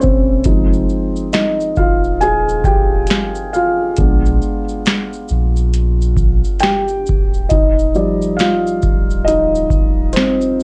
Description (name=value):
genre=lo-fi hip hop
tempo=68 BPM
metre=4/4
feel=swing 62% on 16ths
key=unclear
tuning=A4 = 441 Hz
part: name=felt-muted upright piano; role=accompaniment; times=0.0-10.6 s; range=F3 to Ab5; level=-19 LUFS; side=equal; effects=cassette tape, low-pass filter
part: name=sub bass with octave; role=bass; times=0.0-10.1 s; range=D1 to Bb1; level=-21 LUFS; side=equal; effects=none
part: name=booming analog drum machine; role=drums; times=0.0-10.6 s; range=finger snaps, hi-hat, kick drum, shaker, snare drum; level=-19 LUFS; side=equal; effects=vintage 12-bit sampler grit
room=light reverb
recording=cassette tape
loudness=-15 LUFS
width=mono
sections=0.0-10.6 A section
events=felt piano solo 0.0-10.6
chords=0.4 Fm9; 4.0 Bb7b9; 7.5 Ebmaj9